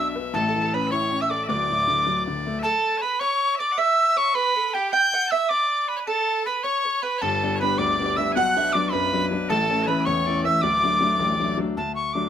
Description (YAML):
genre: celtic folk, Celtic jig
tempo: 105 BPM (dotted quarters)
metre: 6/8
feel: straight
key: D major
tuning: A4 = 441 Hz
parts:
  - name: mid whistle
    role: melody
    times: 0.0-12.3 s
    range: G5 to G6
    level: -22 LUFS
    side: equal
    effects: none
  - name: loud bright bagpipes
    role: second line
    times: 0.0-11.6 s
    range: G4 to A5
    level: -31 LUFS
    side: left 2 dB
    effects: none
  - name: mandolin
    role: second line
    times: 0.0-11.5 s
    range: G4 to G5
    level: -28 LUFS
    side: right 5 dB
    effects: none
  - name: bright baby grand piano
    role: accompaniment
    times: 0.0-2.6, 7.2-12.3 s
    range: D1 to B4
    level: -25 LUFS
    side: left 3 dB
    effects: none
room: moderate studio reverb, RT60 0.6 s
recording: none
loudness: -20 LUFS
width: side -9 dB against mid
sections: 0.0-2.6 A section; 2.6-11.8 A section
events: none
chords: 0.3 A; 1.5 D; 2.6 N.C.; 7.2 G; 8.4 Bm; 9.5 A; 10.6 D